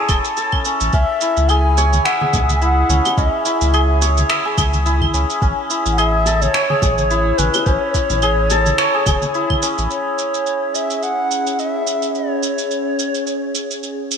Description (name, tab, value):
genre	organic downtempo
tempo	107 BPM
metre	4/4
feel	swing 56% on 16ths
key	C# minor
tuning	A4 = 440 Hz
part	santur	arpeggios	0.0-13.5 s	C#4 to E5	-20 LUFS	left 2 dB	digital delay
part	warm sub bass	bass	0.1-9.9 s	E1 to C#2	-18 LUFS	equal	none
part	electronic claves, shaker and finger snaps	drums	0.1-14.2 s	none	-23 LUFS	right 3 dB	gated reverb
part	electronic kick drum	drums	0.1-9.6 s	none	-19 LUFS	equal	none
part	breathy bright low ney	melody	0.9-13.8 s	B4 to G#5	-20 LUFS	equal	ping-pong delay
part	bongos and congas	percussion	1.8-9.6 s	none	-27 LUFS	left 3 dB	none
part	warbly tape-like pad	sustained chords	10.5-14.2 s	C#4 to C#5	-24 LUFS	right 1 dB	chorus, built-in reverb, sidechain pumping
room	moderate plate reverb, RT60 2.7 s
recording	bright 1980s-style digital production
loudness	-15 LUFS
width	side -7 dB against mid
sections	0.0-9.9 A section; 9.9-14.2 B section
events	none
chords	0.0 Amaj7; 0.9 C#m; 5.4 Amaj7; 9.9 C#m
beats	0.38 | 0.94 1.50 2.06 2.62 | 3.18 3.74 4.30 4.86 | 5.42 5.98 6.54 7.10 | 7.66 8.22 8.79 9.35 | 9.91 10.47 11.03 11.59 | 12.15 12.71 13.27 13.83